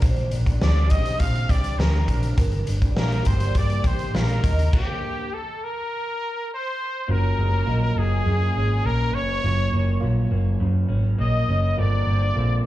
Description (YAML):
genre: indie pop, bedroom pop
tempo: 102 BPM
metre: 4/4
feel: straight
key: unclear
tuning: A4 = 441 Hz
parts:
  - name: clear trumpet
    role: melody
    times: 0.0-12.7 s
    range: G4 to F5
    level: -27 LUFS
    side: equal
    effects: analog chorus, slapback echo
  - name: vibraphone with medium mallets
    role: second line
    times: 0.0-4.6 s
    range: Bb4 to F5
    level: -35 LUFS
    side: right 3 dB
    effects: ensemble chorus, slapback echo, ping-pong delay
  - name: electric guitar through a small old amp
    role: accompaniment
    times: 0.0-12.7 s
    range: Gb2 to Bb4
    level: -32 LUFS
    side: left 1 dB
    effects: wide subtle chorus, warbly pitch drift, slapback echo
  - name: vintage muted picked electric bass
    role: bass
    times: 0.0-12.6 s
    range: Gb1 to Bb2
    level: -22 LUFS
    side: equal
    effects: none
  - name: raw garage drum kit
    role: drums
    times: 0.0-4.9 s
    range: crash cymbal, hi-hat, kick drum, snare drum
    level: -22 LUFS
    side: equal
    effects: none
  - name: tine electric piano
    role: accompaniment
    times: 7.1-12.7 s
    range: Gb3 to Eb5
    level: -30 LUFS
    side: right 4 dB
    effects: cassette tape, slapback echo
room: light reverb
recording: live gig heard through the venue's PA, club reverb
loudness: -20 LUFS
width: side -15 dB against mid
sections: 0.0-7.1 A section; 7.1-12.7 B section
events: stop 4.7-7.1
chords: 0.0 Bb69; 2.4 Gm; 4.4 Eb; 5.9 N.C.; 7.1 Gbmaj7; 11.8 Gm11